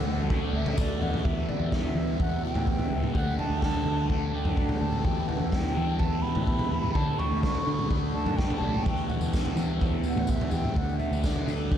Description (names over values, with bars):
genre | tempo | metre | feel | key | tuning
psychedelic rock | 126 BPM | 4/4 | straight | E minor | A4 = 440 Hz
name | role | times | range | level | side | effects
mellow hollow silver concert flute | melody | 0.0-11.2 s | D5 to C#6 | -34 LUFS | equal | ping-pong delay
percussive tonewheel organ | sustained chords | 0.0-11.8 s | A3 to E5 | -36 LUFS | right 5 dB | slow rotary speaker
thick fuzz guitar | riff | 0.0-11.8 s | E2 to F#4 | -32 LUFS | equal | distortion, phaser
fingered electric bass | bass | 0.0-11.8 s | B1 to E3 | -31 LUFS | equal | none
raw garage drum kit | drums | 0.3-11.8 s | kick drum, snare drum, toms | -28 LUFS | equal | none
tambourine | percussion | 0.8-0.9, 8.9-11.8 s | none | -49 LUFS | left 8 dB | none
room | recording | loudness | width
moderate cathedral reverb, RT60 6.4 s | dreamy mix soaked in reverb | -25 LUFS | side -9 dB against mid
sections
0.0-1.2 A section; 1.2-11.8 B section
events
none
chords
0.0 D; 1.2 Em; 3.1 D; 5.0 Em; 6.9 D; 8.8 Em; 10.8 D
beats
0.29 0.77 | 1.24 1.72 2.19 2.67 | 3.14 3.62 4.09 4.57 | 5.04 5.52 6.00 6.47 | 6.95 7.42 7.90 8.37 | 8.85 9.32 9.80 10.28 | 10.75 11.23 11.70